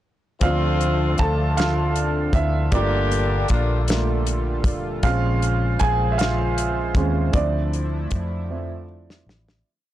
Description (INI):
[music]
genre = slow six-eight R&B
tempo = 52 BPM (dotted quarters)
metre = 6/8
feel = straight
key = D minor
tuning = A4 = 441 Hz
[part]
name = warm baby grand piano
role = accompaniment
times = 0.4-9.7 s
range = F3 to A5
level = -25 LUFS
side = right 4 dB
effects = plate reverb
[part]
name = chorused pulse-width pad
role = sustained chords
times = 0.9-9.6 s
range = Bb2 to C5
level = -30 LUFS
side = left 1 dB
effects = plate reverb
[part]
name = warm horn section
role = stabs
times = 0.4-3.8 s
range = A3 to A4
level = -26 LUFS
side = left 4 dB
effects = ping-pong delay, plate reverb
[part]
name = vintage muted fingered electric bass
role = bass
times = 0.4-9.6 s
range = F1 to F2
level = -23 LUFS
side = equal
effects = none
[part]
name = damped 70s drum kit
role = drums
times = 0.4-9.6 s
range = hi-hat, kick drum, snare drum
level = -22 LUFS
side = left 1 dB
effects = none
[sound]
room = light reverb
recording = blown-out, overdriven recording, overdrive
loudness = -19 LUFS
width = side -13 dB against mid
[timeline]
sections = 0.4-9.6 chorus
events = grand piano solo 0.4-9.6; fade-out 7.3-9.6; drum fill 8.5-9.6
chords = 0.4 Dm9; 2.7 Gm9; 5.0 Bbm9; 7.3 Dm9